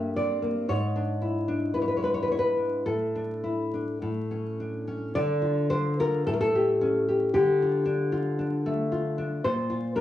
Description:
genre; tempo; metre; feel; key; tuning
romantic piece for solo classical guitar; 51-59 BPM; 2/4; rubato; D minor; A4 = 440 Hz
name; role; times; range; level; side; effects
nylon-string guitar; solo; 0.0-10.0 s; G2 to E5; -24 LUFS; left 1 dB; cassette tape
room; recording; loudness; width
wet studio ambience, RT60 0.5 s; home recording on cassette, vinyl crackle, small room ambience; -24 LUFS; side -12 dB against mid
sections
0.0-5.2 A section; 5.2-10.0 B section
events
none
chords
0.0 Edim/G; 0.7 E7/G#; 2.9 D5/A; 4.0 A; 5.2 Dm; 6.3 A7; 7.3 Dm; 9.4 Bb5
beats
| 0.68 1.74 | 2.86 4.02 | 5.16 6.26 | 7.33 8.38 | 9.44

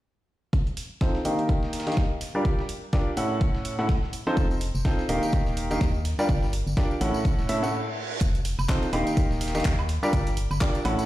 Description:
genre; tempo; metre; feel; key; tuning
piano house; 125 BPM; 4/4; swing 57% on 16ths; F mixolydian; A4 = 439 Hz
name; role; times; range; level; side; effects
dusty soul sampler-style drum kit; drums; 0.5-11.0 s; hi-hat, snare drum; -43 LUFS; equal; sidechain pumping on hats, high-pass filter on hats, high-pass filter on snare, high-pass filter on room
electronic kick drum; drums; 0.5-10.7 s; none; -24 LUFS; equal; none
house drum kit; drums; 0.8-11.1 s; handclaps, hi-hat, woodblock; -35 LUFS; right 2 dB; none
bright grand piano; riff; 1.0-11.1 s; A2 to Gb5; -27 LUFS; equal; sidechain pumping, low-pass filter, ping-pong delay
organ-like FM bass; bass; 4.4-11.0 s; Eb1 to Eb2; -28 LUFS; equal; sidechain pumping
tambourine; percussion; 4.4-11.1 s; none; -44 LUFS; equal; none
reverse cymbal; sound effects; 7.5-8.2 s; none; -35 LUFS; right 3 dB; none
room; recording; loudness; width
light reverb, digital ambience; played on a big sound system in a bare room, stone room reverb; -23 LUFS; side -15 dB against mid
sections
0.5-8.2 A section; 8.2-11.1 B section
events
filter sweep on grand piano 0.5-8.2; reverse cymbal 7.5-8.2; stop 7.7-8.2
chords
0.5 F7; 1.2 Eb; 2.5 Gm7; 3.2 A; 4.4 F7; 5.1 Eb; 6.3 Gm7; 7.0 A; 8.2 F7; 8.9 Eb; 10.1 Gm7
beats
| 0.53 1.01 1.49 1.97 | 2.45 2.93 3.41 3.89 | 4.37 4.85 5.33 5.81 | 6.29 6.77 7.25 7.73 | 8.21 8.69 9.17 9.65 | 10.13 10.61

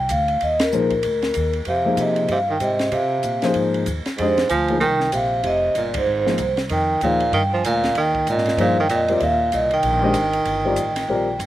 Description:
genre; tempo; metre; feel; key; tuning
modal jazz; 191 BPM; 4/4; swing 61% on 8ths; unclear; A4 = 440 Hz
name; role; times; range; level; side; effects
vibraphone with soft mallets; melody; 0.0-11.4 s; Bb4 to Ab5; -21 LUFS; equal; slapback echo
upright bass; bass; 0.0-11.5 s; F1 to C3; -27 LUFS; equal; none
compact cocktail drum kit; drums; 0.1-11.5 s; hi-hat, kick drum, ride cymbal, snare drum; -30 LUFS; equal; none
dark concert grand piano; accompaniment; 0.7-11.3 s; F3 to Eb5; -22 LUFS; left 3 dB; slapback echo
breathy tenor saxophone; second line; 1.7-11.4 s; Ab2 to F3; -23 LUFS; right 3 dB; slapback echo
room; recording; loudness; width
little or no reverb; recorded outdoors, with no room sound; -17 LUFS; side -14 dB against mid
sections
0.0-11.5 A section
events
band accent 0.6, 5.9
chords
0.0 Eb5; 1.7 Fm11; 6.7 Eb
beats
0.10 | 0.41 0.73 1.04 1.35 | 1.67 1.98 2.30 2.61 | 2.92 3.24 3.55 3.87 | 4.18 4.50 4.81 5.13 | 5.44 5.75 6.07 6.38 | 6.70 7.01 7.33 7.64 | 7.96 8.27 8.58 8.90 | 9.21 9.53 9.84 10.15 | 10.47 10.78 11.09 11.41

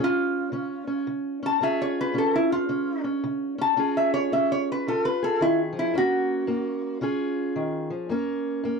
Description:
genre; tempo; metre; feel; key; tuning
acoustic country blues, solo or duo; 111 BPM; 4/4; swing 62% on 8ths; unclear; A4 = 443 Hz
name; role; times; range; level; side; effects
lap resonator guitar; melody; 0.0-7.0 s; E4 to A5; -24 LUFS; left 1 dB; none
fingerpicked steel-string acoustic guitar; accompaniment; 0.0-8.8 s; F#2 to A#4; -27 LUFS; right 1 dB; none
room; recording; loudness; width
moderate booth ambience, RT60 0.2 s; dry, close 1970s-style studio recording; -23 LUFS; side -4 dB against mid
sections
0.0-8.1 A section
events
resonator guitar played with a steel bar solo 0.0-8.1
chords
0.0 C#; 5.9 F#; 7.0 C#; 8.1 F#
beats
0.01 0.54 1.08 | 1.62 2.16 2.70 3.24 | 3.78 4.32 4.86 5.40 | 5.95 6.49 7.03 7.57 | 8.11 8.65

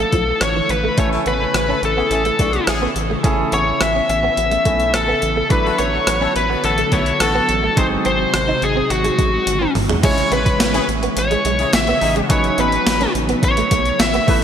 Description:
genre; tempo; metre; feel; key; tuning
1980s-style pop; 106 BPM; 4/4; straight; A major; A4 = 440 Hz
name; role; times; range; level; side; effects
bluesy overdriven lead guitar; melody; 0.0-14.4 s; F#4 to E5; -18 LUFS; left 2 dB; distortion, shimmer reverb
bright concert grand piano; accompaniment; 0.0-14.4 s; F3 to G#5; -25 LUFS; right 1 dB; shimmer reverb
string machine, violas; sustained chords; 0.0-14.4 s; B2 to E4; -26 LUFS; equal; phaser, ensemble chorus
direct-recorded clean electric guitar; riff; 0.0-14.3 s; E3 to D#4; -26 LUFS; right 3 dB; ensemble chorus, shimmer reverb
rubbery square bass; bass; 0.0-14.4 s; G#1 to B1; -24 LUFS; equal; none
gated 80s digital drum machine; drums; 0.1-14.4 s; crash cymbal, hi-hat, kick drum, rim click, snare drum, tambourine, toms; -20 LUFS; equal; gated reverb, gated reverb snare, overdrive
warm horn section; stabs; 1.1-12.4 s; A3 to C#5; -28 LUFS; left 3 dB; shimmer reverb, digital delay
group handclap; percussion; 10.6-14.1 s; none; barely audible; none; none
room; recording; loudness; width
wet lush hall reverb, RT60 2.6 s; bright 1980s-style digital production; -14 LUFS; side -8 dB against mid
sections
0.0-10.0 A section; 10.0-14.4 B section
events
drum fill 9.5-10.0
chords
0.0 Dmadd9; 1.0 Amaj7; 5.5 D69/A; 7.8 G#7; 10.0 C#m/A; 12.3 Badd9/A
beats
0.41 | 0.98 1.54 2.11 2.68 | 3.24 3.81 4.37 4.94 | 5.51 6.07 6.64 7.21 | 7.77 8.34 8.90 9.47 | 10.04 10.60 11.17 11.73 | 12.30 12.87 13.43 14.00

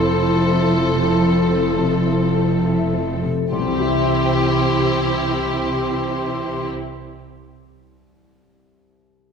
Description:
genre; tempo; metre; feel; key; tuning
cinematic, emotional film score for orchestra; 53 BPM; 4/4; rubato; C major; A4 = 441 Hz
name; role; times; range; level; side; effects
rich studio violin section; melody; 0.0-6.7 s; G4 to A4; -26 LUFS; left 4 dB; none
concert flute; second line; 0.0-6.7 s; C6; -30 LUFS; left 4 dB; none
dark cor anglais; second line; 0.0-6.7 s; G4 to A4; -29 LUFS; right 2 dB; none
warm clarinet; second line; 0.0-6.7 s; E4; -27 LUFS; right 1 dB; none
warm studio violin section; second line; 0.0-6.7 s; C5; -33 LUFS; left 3 dB; none
warm baby grand piano; accompaniment; 0.0-9.3 s; C2 to E5; -27 LUFS; left 2 dB; none
warm studio viola section; accompaniment; 0.0-6.7 s; F3 to E4; -27 LUFS; right 3 dB; none
dark French horn section; sustained chords; 0.0-6.7 s; E3 to A4; -28 LUFS; right 1 dB; none
concert harp; arpeggios; 0.0-7.4 s; C3 to E5; -26 LUFS; left 6 dB; none
dark studio double bass section; bass; 0.0-6.7 s; F1 to C2; -26 LUFS; right 2 dB; none
rich studio cello section; bass; 0.0-6.7 s; F2 to C3; -23 LUFS; right 2 dB; none
room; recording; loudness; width
wet scoring stage reverb, RT60 1.9 s; none; -16 LUFS; side -6 dB against mid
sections
0.0-3.5 A section; 3.5-8.0 B section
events
slowing down 0.0-3.5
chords
0.0 Fmaj7; 3.5 C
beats
0.11 1.21 2.34 | 3.52 4.64 5.77 6.90

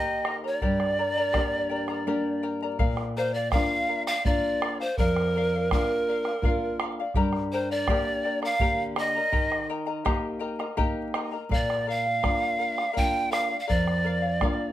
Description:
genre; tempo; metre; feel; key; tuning
andean folk, Andean ensemble; 83 BPM; 3/4; straight; unclear; A4 = 437 Hz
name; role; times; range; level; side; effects
breathy bright pan flute; melody; 0.0-14.7 s; Bb4 to G5; -26 LUFS; right 1 dB; plate reverb
mellow large quena; second line; 0.0-2.4 s; D5 to G5; -33 LUFS; right 4 dB; none
charango; accompaniment; 0.0-14.7 s; G4 to Bb5; -32 LUFS; left 5 dB; none
nylon-string guitar; accompaniment; 0.0-14.7 s; F2 to G4; -30 LUFS; right 1 dB; none
bombo; percussion; 0.2-14.6 s; none; -28 LUFS; equal; none
room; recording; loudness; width
wet studio ambience, RT60 0.5 s; vinyl crackle; -24 LUFS; side -13 dB against mid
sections
0.0-2.8 A section; 2.8-14.7 B section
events
nylon-string guitar fill 14.4-14.7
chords
0.0 Eb; 0.6 Gm; 2.8 Bb; 7.2 Gm; 9.3 Eb; 11.5 Bb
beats
| 0.61 1.34 2.07 | 2.80 3.53 4.25 | 4.98 5.71 6.43 | 7.16 7.88 8.61 | 9.33 10.06 10.79 | 11.51 12.24 12.96 | 13.69 14.41

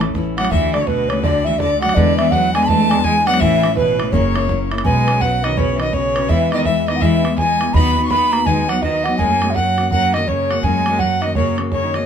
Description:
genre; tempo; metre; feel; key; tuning
celtic folk, Celtic hornpipe; 166 BPM; 4/4; swing 63% on 8ths; A major, B major from 4.9 s; A4 = 440 Hz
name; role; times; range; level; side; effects
fingerpicked steel-string acoustic guitar; accompaniment; 0.0-12.1 s; D2 to B4; -20 LUFS; left 5 dB; none
upright bass; bass; 0.0-12.1 s; F#1 to F#2; -23 LUFS; equal; none
bodhran; percussion; 0.0-12.0 s; none; -23 LUFS; right 3 dB; none
mellow hollow baroque flute; melody; 0.4-12.1 s; B4 to B5; -19 LUFS; right 2 dB; none
rich cello; second line; 0.4-12.1 s; B2 to B3; -23 LUFS; right 5 dB; none
rich fiddle; second line; 0.4-12.1 s; B4 to C#6; -24 LUFS; left 5 dB; none
room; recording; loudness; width
moderate studio reverb, RT60 0.5 s; minimal, uncompressed stereo recording; -14 LUFS; side -8 dB against mid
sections
0.0-4.9 A section; 4.9-12.1 B section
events
none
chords
0.0 A; 0.5 D; 2.0 E7; 3.4 A; 4.1 F#7; 4.9 Bsus2; 6.3 E; 7.7 B/D#; 9.2 F#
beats
0.16 | 0.52 0.88 1.24 1.60 | 1.96 2.32 2.69 3.05 | 3.41 3.77 4.13 4.49 | 4.85 5.21 5.58 5.94 | 6.30 6.66 7.02 7.38 | 7.75 8.11 8.47 8.83 | 9.19 9.55 9.91 10.28 | 10.64 11.00 11.36 11.72

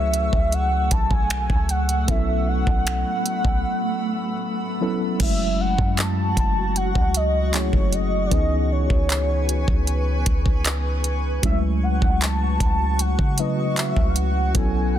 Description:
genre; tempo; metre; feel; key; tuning
contemporary R&B; 77 BPM; 4/4; straight; F# dorian; A4 = 442 Hz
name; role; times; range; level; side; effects
warm velvety synth lead; melody; 0.0-15.0 s; C#5 to A5; -26 LUFS; equal; chorus, digital delay
mellow tine electric piano; accompaniment; 0.0-15.0 s; E3 to B4; -27 LUFS; left 1 dB; overdrive, medium stereo tremolo
granular cloud pad; sustained chords; 0.0-15.0 s; A3 to E6; -30 LUFS; equal; built-in reverb, sidechain pumping
soft 808-style bass; bass; 0.0-15.0 s; F#1 to C#3; -23 LUFS; equal; none
smooth R&B drum kit; drums; 0.1-14.7 s; crash cymbal, finger snaps, handclaps, hi-hat, kick drum; -22 LUFS; equal; none
room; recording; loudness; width
little or no reverb; dense, heavily limited modern master; -19 LUFS; side -11 dB against mid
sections
0.0-5.2 A section; 5.2-15.0 B section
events
break 3.6-5.2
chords
0.0 F#m7/C#; 2.1 B7sus4; 5.2 F#m7; 8.3 C#m7; 11.4 F#m7/C#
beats
0.53 1.30 | 2.08 2.86 3.64 4.42 | 5.20 5.98 6.76 7.54 | 8.32 9.10 9.88 10.65 | 11.43 12.21 12.99 13.77 | 14.55

